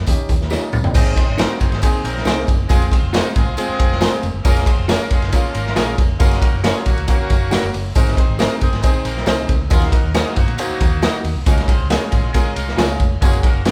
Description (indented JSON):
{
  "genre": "uptempo 1960s-style soul",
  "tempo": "137 BPM",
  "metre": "4/4",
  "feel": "straight",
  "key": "Ab mixolydian",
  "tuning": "A4 = 445 Hz",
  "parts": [
    { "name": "vintage muted fingered electric bass", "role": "bass", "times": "0.0-13.7 s", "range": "F1 to Bb2", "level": "-26 LUFS", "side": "equal", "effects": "none" },
    { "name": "warm grand piano", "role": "accompaniment", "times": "0.1-13.7 s", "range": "Ab3 to C5", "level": "-28 LUFS", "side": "equal", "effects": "none" },
    { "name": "raw garage drum kit", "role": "drums", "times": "0.1-13.7 s", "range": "crash cymbal, hi-hat, kick drum, ride cymbal, snare drum, toms", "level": "-18 LUFS", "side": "equal", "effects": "none" },
    { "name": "tambourine", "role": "percussion", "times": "0.1-13.7 s", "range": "none", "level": "-37 LUFS", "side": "equal", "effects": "none" },
    { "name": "clean electric guitar", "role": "stabs", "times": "0.5-13.7 s", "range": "Db4 to D#5", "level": "-28 LUFS", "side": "equal", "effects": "none" },
    { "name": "clear horn section", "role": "second line", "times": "0.9-13.7 s", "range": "Gb3 to C5", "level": "-28 LUFS", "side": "equal", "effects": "none" }
  ],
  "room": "moderate large studio reverb, RT60 0.9 s",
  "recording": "band playing live in one room",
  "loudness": "-17 LUFS",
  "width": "mono",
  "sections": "0.9-13.7 A section",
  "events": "drum fill 0.5-0.9",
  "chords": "0.1 D#7; 0.9 Abadd9; 2.7 Fm; 4.5 Bbm7/F; 6.2 Gb; 8.0 Ab; 9.7 Ebm; 11.5 Db"
}